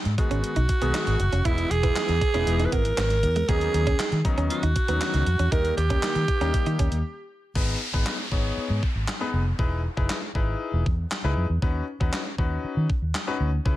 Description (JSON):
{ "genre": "dance-pop", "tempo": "118 BPM", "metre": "4/4", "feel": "straight", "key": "G# minor", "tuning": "A4 = 444 Hz", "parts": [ { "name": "vintage muted fingered electric bass", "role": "bass", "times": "0.1-13.8 s", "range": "E1 to D#3", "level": "-25 LUFS", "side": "equal", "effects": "sidechain pumping" }, { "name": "gated 80s digital drum machine", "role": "drums", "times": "0.1-13.8 s", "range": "crash cymbal, handclaps, hi-hat, kick drum, snare drum", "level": "-26 LUFS", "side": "equal", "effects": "gated reverb, gated reverb snare" }, { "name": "raspy alto saxophone", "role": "melody", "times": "0.2-7.3 s", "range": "E4 to B4", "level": "-27 LUFS", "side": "right 3 dB", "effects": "ping-pong delay" }, { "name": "clear concert grand piano", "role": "accompaniment", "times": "0.2-13.8 s", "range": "D#3 to C#5", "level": "-31 LUFS", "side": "left 4 dB", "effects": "sidechain pumping" }, { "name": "direct-recorded clean electric guitar", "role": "riff", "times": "0.2-6.9 s", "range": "G#3 to E4", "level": "-33 LUFS", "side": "right 5 dB", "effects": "analog chorus" }, { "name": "downlifter", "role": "sound effects", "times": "7.6-11.6 s", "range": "none", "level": "-36 LUFS", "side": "equal", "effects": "none" } ], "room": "little or no reverb", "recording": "none", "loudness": "-22 LUFS", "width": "side -15 dB against mid", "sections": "0.0-7.6 A section; 7.6-13.8 B section", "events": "break 7.0-7.6", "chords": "0.0 G#m; 1.5 Emaj7; 3.5 Badd9/D#; 5.5 D#; 7.6 G#m; 9.6 Emaj7; 11.6 Badd9/D#" }